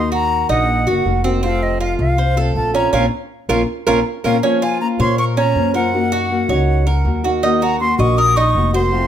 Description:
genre	latin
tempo	160 BPM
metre	4/4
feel	straight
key	Bb harmonic minor, Bb minor from 4.4 s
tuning	A4 = 439 Hz
part	breathy silver concert flute	melody	0.0-9.1 s	Eb5 to Eb6	-20 LUFS	left 2 dB	none
part	nylon-string guitar	accompaniment	0.0-9.1 s	C3 to C5	-20 LUFS	left 4 dB	none
part	Cuban tres	arpeggios	0.0-9.1 s	C4 to Eb5	-19 LUFS	right 5 dB	none
part	upright bass	bass	0.0-9.1 s	F1 to Bb2	-19 LUFS	equal	none
room	light reverb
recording	none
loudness	-14 LUFS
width	side -10 dB against mid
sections	0.0-4.4 A section; 4.4-9.1 B section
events	band accent 2.9-4.4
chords	0.0 Ebm; 1.4 F; 2.9 Bbmadd9; 5.9 Gb6; 7.4 Ebm7

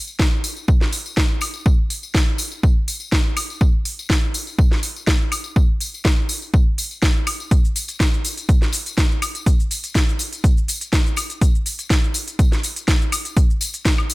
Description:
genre	house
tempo	123 BPM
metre	4/4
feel	straight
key	none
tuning	none
part	tambourine	percussion	0.1-14.1 s	none	-30 LUFS	left 4 dB	none
part	electronic kick drum	drums	0.2-14.0 s	none	-16 LUFS	equal	none
part	garage drum kit	drums	0.2-14.1 s	hi-hat, shaker, snare drum, woodblock	-24 LUFS	equal	none
room	digital ambience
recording	none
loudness	-17 LUFS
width	side -21 dB against mid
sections	0.0-14.1 A section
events	none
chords	none

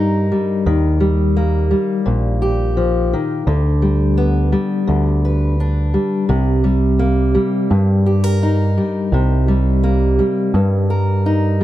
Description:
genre	folk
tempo	85 BPM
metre	4/4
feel	straight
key	C minor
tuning	A4 = 439 Hz
part	fingerpicked steel-string acoustic guitar	accompaniment	0.0-11.6 s	G2 to B4	-17 LUFS	left 1 dB	none
part	picked electric bass	bass	0.0-11.6 s	Bb1 to G2	-16 LUFS	equal	none
room	light reverb, small room ambience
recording	none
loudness	-14 LUFS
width	side -14 dB against mid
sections	0.0-11.6 A section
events	none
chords	0.0 Cm7 (rootless); 0.7 Eb; 3.5 G/D; 6.3 Cm7

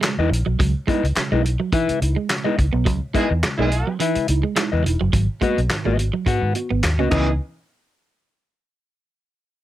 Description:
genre	funk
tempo	106 BPM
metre	4/4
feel	swing 56% on 16ths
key	C# dorian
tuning	A4 = 438 Hz
part	mellow electric guitar	accompaniment	0.0-7.3 s	E4 to F#5	-24 LUFS	left 7 dB	none
part	electric guitar at the edge of break-up	riff	0.0-7.3 s	E3 to C#4	-26 LUFS	right 7 dB	none
part	mellow tine electric piano	stabs	0.0-7.3 s	G#2 to F#4	-27 LUFS	right 3 dB	medium stereo tremolo
part	warm soul drum kit	drums	0.0-7.3 s	crash cymbal, handclaps, hi-hat, kick drum, snare drum	-23 LUFS	equal	none
part	group handclap	percussion	0.0-7.4 s	none	-32 LUFS	left 3 dB	none
part	vintage muted fingered electric bass	bass	0.2-7.4 s	E1 to G#2	-20 LUFS	equal	none
part	clear horn section	second line	3.1-7.3 s	E3 to G#4	-25 LUFS	right 3 dB	none
room	light reverb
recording	none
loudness	-18 LUFS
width	side -13 dB against mid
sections	0.0-7.4 A section; 7.4-9.6 B section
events	none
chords	0.0 C#m9; 5.1 G#m7; 7.1 C#m9; 7.4 N.C.

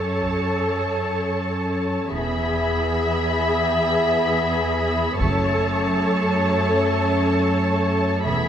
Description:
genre	cinematic, epic orchestral film score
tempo	free time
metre	none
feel	none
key	F# minor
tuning	A4 = 439 Hz
part	warm symphonic violin section	melody	0.0-8.5 s	A5 to B5	-28 LUFS	left 3 dB	none
part	warm symphonic violin section	second line	0.0-8.5 s	C#5 to E5	-26 LUFS	left 1 dB	none
part	warm symphonic viola section	accompaniment	0.0-8.5 s	G#4 to A4	-26 LUFS	right 2 dB	none
part	warm French horn section	sustained chords	0.0-8.5 s	A3 to A4	-26 LUFS	left 3 dB	none
part	rich symphonic cello section	bass	0.0-8.5 s	E2 to F#2	-24 LUFS	right 2 dB	none
part	taiko ensemble	drums	0.2-0.6, 5.2-6.7 s	none	-29 LUFS	equal	none
part	warm symphonic double bass section	bass	2.1-8.5 s	E1 to F#1	-30 LUFS	right 4 dB	none
part	reverse cymbal	sound effects	8.3-8.5 s	none	barely audible	none	none
room	wet concert hall reverb, RT60 1.7 s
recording	none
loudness	-19 LUFS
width	side -9 dB against mid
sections	0.0-8.5 A section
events	none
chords	0.0 F#m; 2.1 E; 5.2 F#m

